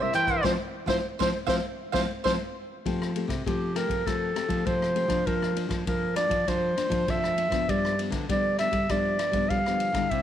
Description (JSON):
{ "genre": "samba and choro", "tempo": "99 BPM", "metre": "4/4", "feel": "straight", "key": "F major", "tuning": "A4 = 442 Hz", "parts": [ { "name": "warm clarinet", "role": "melody", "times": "0.0-10.2 s", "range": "G4 to G5", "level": "-27 LUFS", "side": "equal", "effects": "slapback echo" }, { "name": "cavaquinho", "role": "accompaniment", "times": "0.0-2.3 s", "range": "E4 to F5", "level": "-33 LUFS", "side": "right 13 dB", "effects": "none" }, { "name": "nylon-string guitar", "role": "accompaniment", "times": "0.0-10.2 s", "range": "F2 to G4", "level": "-34 LUFS", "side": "left 11 dB", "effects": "none" }, { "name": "nylon-string guitar", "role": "bass", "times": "0.0-10.2 s", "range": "C3 to G3", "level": "-30 LUFS", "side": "right 1 dB", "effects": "none" }, { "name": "swinging big-band drum kit", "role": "drums", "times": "0.1-10.2 s", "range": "hi-hat, kick drum, ride cymbal, rim click, snare drum", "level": "-33 LUFS", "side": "left 2 dB", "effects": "none" } ], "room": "light reverb, studio reverb", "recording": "1960s-style stereo with parts hard left and right", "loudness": "-24 LUFS", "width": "side -10 dB against mid", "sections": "0.0-2.9 A section; 2.9-10.2 B section", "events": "band accent 0.4-2.9; clarinet solo 2.9-10.2", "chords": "0.4 F5; 2.9 Fadd9; 5.3 Bb/F; 7.7 G7", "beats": "| 0.45 1.05 1.65 2.26 | 2.86 3.46 4.07 4.67 | 5.28 5.88 6.48 7.09 | 7.69 8.30 8.90 9.51 | 10.11" }